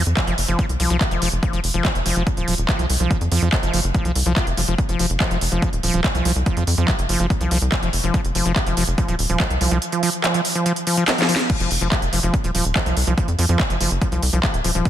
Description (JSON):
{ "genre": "psychedelic trance", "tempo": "143 BPM", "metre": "4/4", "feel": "straight", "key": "unclear", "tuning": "A4 = 436 Hz", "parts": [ { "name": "overdriven acid bass", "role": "riff", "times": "0.0-14.8 s", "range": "F3 to F4", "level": "-24 LUFS", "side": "moving between left 5 dB and right 5 dB", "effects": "auto-pan, sidechain pumping, ping-pong delay" }, { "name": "tight sequencer bass", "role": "bass", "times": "0.0-14.8 s", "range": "Eb1 to F2", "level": "-21 LUFS", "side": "equal", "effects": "none" }, { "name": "techno drum kit", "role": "drums", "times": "0.1-14.9 s", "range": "crash cymbal, handclaps, hi-hat, snare drum", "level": "-23 LUFS", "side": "right 1 dB", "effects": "none" }, { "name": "electronic kick drum", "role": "drums", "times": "0.2-14.9 s", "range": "none", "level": "-22 LUFS", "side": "equal", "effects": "none" } ], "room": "light reverb", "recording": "dense, heavily limited modern master", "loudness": "-17 LUFS", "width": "side -11 dB against mid", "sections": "0.0-11.5 A section; 11.5-14.9 B section", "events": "drum fill 11.1-11.5; drop 11.5-14.9", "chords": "0.0 F5" }